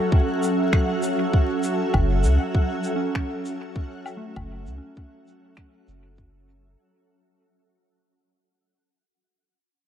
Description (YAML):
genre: ambient dub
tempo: 99 BPM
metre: 4/4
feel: straight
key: F# minor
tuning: A4 = 439 Hz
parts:
  - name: granular cloud pad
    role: sustained chords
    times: 0.0-6.8 s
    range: F#3 to E5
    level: -25 LUFS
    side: equal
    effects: built-in reverb
  - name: soft synth bell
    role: arpeggios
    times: 0.0-7.4 s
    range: A3 to C#6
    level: -36 LUFS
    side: right 4 dB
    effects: chorus, low-pass filter, tape echo
  - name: backwards swelling texture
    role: texture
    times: 0.0-6.8 s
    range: F#4 to F#5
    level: -32 LUFS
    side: equal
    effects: built-in reverb
  - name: electronic kick drum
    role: drums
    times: 0.1-6.3 s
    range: none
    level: -20 LUFS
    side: equal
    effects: none
  - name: shaker, finger snaps and woodblock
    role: drums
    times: 0.4-6.6 s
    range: none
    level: -32 LUFS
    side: left 2 dB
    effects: low-pass filter on perc, low-pass filter on snare, low-pass filter on room, dub echo
  - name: soft dub sub bass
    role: bass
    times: 1.9-6.8 s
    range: F#1 to C#2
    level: -22 LUFS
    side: equal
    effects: none
room: light reverb, small room ambience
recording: dark, warm production, vinyl crackle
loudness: -20 LUFS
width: side -10 dB against mid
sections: 0.0-6.8 A section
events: fade-out 0.0-6.8; filter sweep on synth bell 0.0-6.8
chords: 0.0 F#m7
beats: 0.12 0.73 1.33 | 1.94 2.54 3.15 3.76 | 4.36 4.97 5.57 6.18